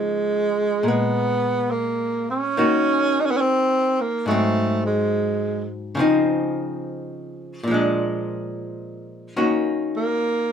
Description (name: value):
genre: jazz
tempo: 71 BPM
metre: 4/4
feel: swing 69% on 8ths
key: Db major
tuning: A4 = 440 Hz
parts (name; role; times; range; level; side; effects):
- breathy tenor saxophone; melody; 0.0-10.5 s; Ab3 to Eb4; -20 LUFS; right 2 dB; none
- archtop guitar, miked and amplified; accompaniment; 0.0-10.5 s; Ab2 to Gb4; -23 LUFS; left 2 dB; none
room: moderate studio ambience, RT60 0.4 s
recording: band playing live in one room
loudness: -19 LUFS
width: side -8 dB against mid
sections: 0.0-10.5 A section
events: none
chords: 0.0 Db69; 0.9 Bb7(no3); 2.6 Ebm; 4.3 Ab7; 6.0 Dbmaj9; 7.7 Bb7; 9.4 Ebm7